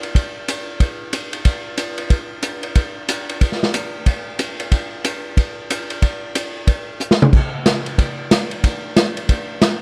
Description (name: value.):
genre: jazz.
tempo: 184 BPM.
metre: 4/4.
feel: swing 62% on 8ths.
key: none.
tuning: none.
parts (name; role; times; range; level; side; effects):
swinging big-band drum kit; drums; 0.0-9.7 s; crash cymbal, hi-hat, kick drum, ride cymbal, snare drum, toms; -20 LUFS; equal; none.
room: moderate booth ambience, RT60 0.2 s.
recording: dry, close 1970s-style studio recording.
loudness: -20 LUFS.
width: mono.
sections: 0.0-7.3 A section; 7.3-9.8 B section.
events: drum fill 7.0-7.3.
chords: none.